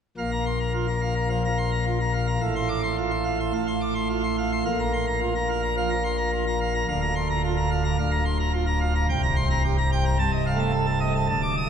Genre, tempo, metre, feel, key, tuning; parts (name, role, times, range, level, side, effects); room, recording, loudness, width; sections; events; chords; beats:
classical, organ toccata; 108 BPM; 4/4; straight; Bb major; A4 = 444 Hz
pipe organ, plenum; solo; 0.2-11.7 s; C1 to Eb6; -22 LUFS; equal
wet cathedral reverb, RT60 4.2 s; minimal, uncompressed stereo recording; -22 LUFS; side -7 dB against mid
0.2-11.7 A section
0.2 Bb5; 2.4 F/A; 4.7 Bb5; 6.9 Bb/D; 9.1 C5; 10.2 Adim/C
| 0.18 0.74 1.30 1.86 | 2.42 2.98 3.54 4.10 | 4.66 5.21 5.77 6.33 | 6.88 7.43 7.98 8.53 | 9.08 9.64 10.19 10.74 | 11.29